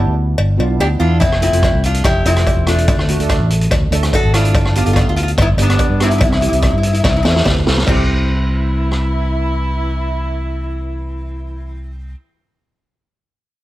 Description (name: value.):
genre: calypso.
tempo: 144 BPM.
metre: 4/4.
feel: straight.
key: C major.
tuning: A4 = 440 Hz.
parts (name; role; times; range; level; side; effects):
metal-body resonator slide guitar; melody; 0.0-12.2 s; A3 to A4; -19 LUFS; left 2 dB; none.
steel pan; accompaniment; 0.0-12.2 s; A3 to A4; -22 LUFS; right 3 dB; none.
fingered electric bass; bass; 0.0-12.1 s; E1 to G2; -16 LUFS; equal; none.
cowbell; percussion; 0.4-8.1 s; none; -24 LUFS; left 1 dB; none.
street-band drum kit; drums; 1.2-9.0 s; crash cymbal, hi-hat, kick drum, rim click, snare drum; -17 LUFS; equal; none.
warm horn section; second line; 7.9-12.0 s; E3 to E4; -25 LUFS; right 1 dB; none.
room: little or no reverb.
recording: none.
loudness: -13 LUFS.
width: side -16 dB against mid.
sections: 0.0-7.9 A section; 7.9-11.2 B section.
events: drum fill 7.0-7.9.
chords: 0.0 G; 1.2 Fmaj7; 2.9 D; 4.5 G; 6.2 C.